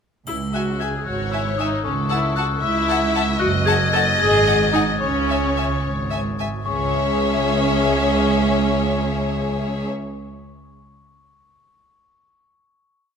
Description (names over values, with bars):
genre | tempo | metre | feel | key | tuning
cinematic, playful, whimsical film cue | 76 BPM (dotted quarters) | 6/8 | straight | C# minor | A4 = 440 Hz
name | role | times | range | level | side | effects
glockenspiel with rubber mallets | melody | 0.3-9.9 s | C#6 to A6 | -26 LUFS | left 6 dB | none
rich studio viola section | accompaniment | 0.3-9.9 s | C#4 to A4 | -24 LUFS | right 2 dB | none
rich studio cello section | bass | 0.3-9.9 s | C#2 to C#3 | -25 LUFS | right 3 dB | none
rich studio double bass section | bass | 0.3-9.9 s | F#1 to C#2 | -26 LUFS | right 2 dB | none
triangle | percussion | 0.3-1.3 s | none | -42 LUFS | left 4 dB | none
rich studio violin section | second line | 0.5-9.9 s | G#4 to A5 | -25 LUFS | left 4 dB | none
warm studio violin section | melody | 1.1-9.9 s | A4 to E5 | -26 LUFS | left 3 dB | none
room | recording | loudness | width
moderate concert hall reverb, RT60 2.0 s | close, detailed microphones | -17 LUFS | side -6 dB against mid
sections
0.3-6.7 A section; 6.7-9.8 final chord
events
none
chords
0.3 C#m; 1.8 A6/C#; 3.4 F#m; 4.2 G#5; 5.0 C#5; 6.7 C#m